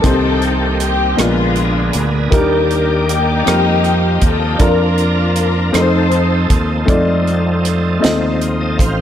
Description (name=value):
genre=slow gospel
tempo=52 BPM (dotted quarters)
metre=6/8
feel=straight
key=unclear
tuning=A4 = 440 Hz
part: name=warm studio string section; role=melody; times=0.0-6.9 s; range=Ab3 to C5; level=-18 LUFS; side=left 3 dB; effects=slapback echo
part: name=warm upright piano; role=accompaniment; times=0.0-9.0 s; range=Bb2 to Eb5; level=-18 LUFS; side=left 2 dB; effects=none
part: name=bright tonewheel organ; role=sustained chords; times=0.0-9.0 s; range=D3 to A5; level=-21 LUFS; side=right 2 dB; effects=slow rotary speaker, overdrive, chorus vibrato
part: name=fingered electric bass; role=bass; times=0.0-9.0 s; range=A1 to F2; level=-17 LUFS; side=equal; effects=none
part: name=tight funk drum kit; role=drums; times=0.0-9.0 s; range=hi-hat, kick drum, rim click, snare drum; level=-16 LUFS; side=right 1 dB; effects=none
room=light reverb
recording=none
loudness=-12 LUFS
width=side -10 dB against mid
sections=0.0-9.0 A section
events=none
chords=0.0 Cm7; 1.2 Bb7b9; 2.3 Ebmaj7; 3.5 F9sus4; 4.6 Bb/F; 5.7 F7